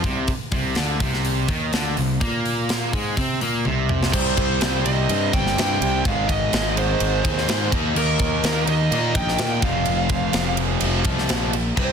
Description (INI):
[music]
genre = hard rock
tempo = 126 BPM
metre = 4/4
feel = straight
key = C minor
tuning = A4 = 440 Hz
[part]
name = heavy high-gain guitar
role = riff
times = 0.0-11.9 s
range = F2 to Eb4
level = -27 LUFS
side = right 14 dB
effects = distortion
[part]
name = overdriven semi-hollow guitar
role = riff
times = 0.0-11.9 s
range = F2 to Eb4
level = -26 LUFS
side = left 12 dB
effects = none
[part]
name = fuzz picked electric bass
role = bass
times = 0.0-11.9 s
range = F1 to C3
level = -24 LUFS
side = equal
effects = overdrive
[part]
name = tight metal drum kit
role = drums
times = 0.0-11.9 s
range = crash cymbal, hi-hat, kick drum, ride cymbal, snare drum, toms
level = -24 LUFS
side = equal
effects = soft clipping on kick
[part]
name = high-gain lead guitar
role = melody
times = 4.1-11.9 s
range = Bb4 to G5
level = -25 LUFS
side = right 4 dB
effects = distortion, tape echo
[sound]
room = little or no reverb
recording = dense, heavily limited modern master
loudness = -19 LUFS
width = side -7 dB against mid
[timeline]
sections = 0.0-4.1 A section; 4.1-11.9 B section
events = drum fill 3.7-4.1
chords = 0.0 Cm; 6.0 Ab; 7.7 Eb; 9.6 F5